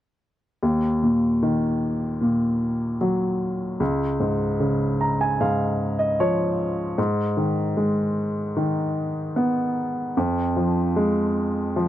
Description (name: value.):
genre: pop.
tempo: 76 BPM.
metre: 4/4.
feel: straight.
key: Eb minor.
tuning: A4 = 440 Hz.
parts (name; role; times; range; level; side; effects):
clear baby grand piano; accompaniment; 0.6-11.9 s; Db2 to Bb5; -21 LUFS; equal; none.
room: light reverb.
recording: dry, close 1970s-style studio recording.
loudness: -21 LUFS.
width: side -12 dB against mid.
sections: 0.6-11.9 A section.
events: grand piano fill 4.6-7.0.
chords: 0.6 Ebm; 3.8 Db; 7.0 Abm; 10.2 Fm.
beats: | 0.61 1.42 2.21 3.01 | 3.81 4.60 5.40 6.19 | 6.98 7.77 8.56 9.36 | 10.15 10.95 11.76.